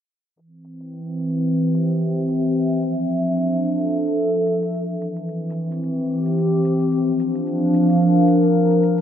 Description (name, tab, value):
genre	folktronica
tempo	110 BPM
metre	4/4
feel	swing 56% on 16ths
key	C mixolydian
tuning	A4 = 440 Hz
part	warbly tape-like pad	sustained chords	0.8-9.0 s	E3 to F5	-18 LUFS	equal	chorus, built-in reverb
part	shaker	drums	0.4-9.0 s	none	-57 LUFS	left 4 dB	overdrive, low-pass filter on perc
room	wet studio reverb, RT60 0.6 s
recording	low-pass filter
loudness	-18 LUFS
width	side -9 dB against mid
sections	0.4-9.0 A section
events	filter sweep on drum 0.4-9.0; filter sweep 0.4-9.0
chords	0.4 C; 2.5 Dmadd9; 4.7 C; 6.9 Bb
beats	| 0.37 0.91 1.46 2.00 | 2.55 3.09 3.64 4.18 | 4.73 5.28 5.82 6.37 | 6.91 7.46 8.00 8.55